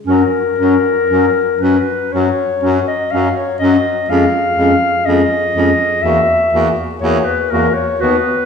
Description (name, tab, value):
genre	classical, lyrical piece for single-reed quartet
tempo	61 BPM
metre	4/4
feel	rubato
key	F# major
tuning	A4 = 440 Hz
part	warm clarinet	melody	0.1-8.5 s	A#4 to E#5	-15 LUFS	left 3 dB	none
part	warm clarinet	second line	0.1-8.2 s	C#4 to F#4	-18 LUFS	equal	none
part	warm tenor saxophone	accompaniment	0.1-8.2 s	F#3 to B3	-21 LUFS	left 2 dB	none
part	bright baritone saxophone	bass	0.1-8.2 s	D#2 to F#2	-19 LUFS	equal	none
room	wet recital hall reverb, RT60 1.5 s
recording	heard from further back in the room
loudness	-12 LUFS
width	side -6 dB against mid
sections	0.1-8.5 A section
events	none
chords	0.1 F#; 4.1 C#/E#; 6.0 F#7/E